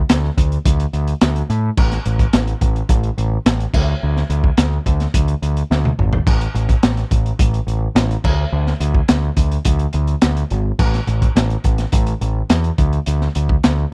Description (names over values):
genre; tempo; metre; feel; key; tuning
psychedelic rock; 106 BPM; 4/4; straight; unclear; A4 = 438 Hz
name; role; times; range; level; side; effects
growling picked electric bass; bass; 0.1-13.8 s; G#1 to A2; -17 LUFS; equal; overdrive
crunchy breakbeat drum kit; drums; 0.1-13.8 s; crash cymbal, hi-hat, kick drum, snare drum, toms; -16 LUFS; equal; none
room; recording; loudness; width
little or no reverb; dry, close 1970s-style studio recording; -14 LUFS; side -36 dB against mid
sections
0.0-13.9 A section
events
drum fill 5.7-6.3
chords
none